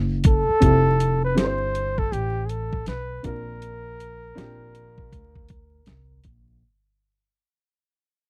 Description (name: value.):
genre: hip hop, jazz-hop.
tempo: 80 BPM.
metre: 4/4.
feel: swing 63% on 16ths.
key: Bb lydian.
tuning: A4 = 442 Hz.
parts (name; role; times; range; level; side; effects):
upright bass; bass; 0.0-6.6 s; F1 to D2; -28 LUFS; equal; none.
boom bap sampler-style drum kit; drums; 0.2-6.5 s; hi-hat, kick drum, snare drum; -23 LUFS; equal; none.
breathy flugelhorn; melody; 0.3-6.2 s; G4 to C5; -28 LUFS; equal; none.
dark upright piano; accompaniment; 0.6-5.4 s; C4 to C5; -30 LUFS; equal; none.
room: little or no reverb.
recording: dry, close 1970s-style studio recording, vinyl crackle.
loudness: -22 LUFS.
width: mono.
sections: 0.0-6.6 A section.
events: fade-out 0.0-6.6.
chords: 0.0 N.C.; 0.6 Fmaj9; 3.2 Bbadd9.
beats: | 0.62 1.37 2.12 2.87 | 3.62 4.37 5.12 5.87.